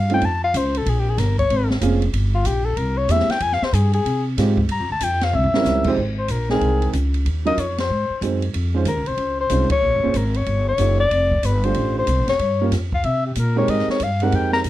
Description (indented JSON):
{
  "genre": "jazz, small-group swing and bop",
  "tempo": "187 BPM",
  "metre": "4/4",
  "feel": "swing 64% on 8ths",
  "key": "F minor",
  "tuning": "A4 = 441 Hz",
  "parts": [
    { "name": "breathy soprano saxophone", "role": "melody", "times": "0.0-14.6 s", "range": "F4 to Bb5", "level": "-21 LUFS", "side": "left 4 dB", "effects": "slapback echo" },
    { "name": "upright bass", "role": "bass", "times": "0.0-14.7 s", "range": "F1 to C3", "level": "-21 LUFS", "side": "equal", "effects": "none" },
    { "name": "warm upright piano", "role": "accompaniment", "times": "0.1-14.6 s", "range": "F2 to G5", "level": "-22 LUFS", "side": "right 6 dB", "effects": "none" },
    { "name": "open jazz drum kit", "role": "drums", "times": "0.1-14.7 s", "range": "crash cymbal, hi-hat, kick drum, ride cymbal, snare drum, toms", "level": "-29 LUFS", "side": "equal", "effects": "none" }
  ],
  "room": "little or no reverb",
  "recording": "dry, close 1970s-style studio recording",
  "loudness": "-17 LUFS",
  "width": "side -14 dB against mid",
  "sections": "0.0-6.0 A section; 6.0-14.7 B section",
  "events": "soprano saxophone solo 0.0-6.0; drum fill 5.3-5.6; band accent 7.7, 9.7",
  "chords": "0.2 Dbmaj7#5; 0.9 Bbm9; 2.1 Gm; 2.8 C7b13; 3.4 Fm9; 4.7 G5; 5.3 C7b9; 6.0 Abmaj9; 7.3 Ebm9; 7.9 Ab7; 8.5 Dbmaj9; 9.8 Bbm7; 10.5 Eb9; 11.1 F69; 12.4 Gm7b5; 13.0 C5; 13.7 Fm11"
}